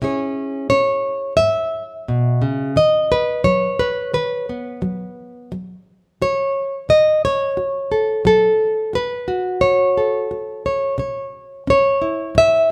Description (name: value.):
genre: folk, solo fingerstyle acoustic guitar.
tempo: 88 BPM.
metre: 4/4.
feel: straight.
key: unclear.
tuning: A4 = 437 Hz.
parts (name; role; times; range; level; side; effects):
nylon-string guitar; solo; 0.0-12.7 s; G#2 to E5; -18 LUFS; equal; none.
room: moderate stone room reverb, RT60 1.3 s.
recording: band playing live in one room.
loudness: -19 LUFS.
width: mono.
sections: 0.0-12.7 A section.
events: none.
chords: 0.0 C#m; 2.8 B/D#; 5.5 F#m; 11.0 C#m.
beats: | 0.01 0.69 1.38 2.07 | 2.76 3.44 4.13 4.83 | 5.52 6.21 6.90 7.59 | 8.27 8.96 9.64 10.32 | 11.00 11.68 12.36.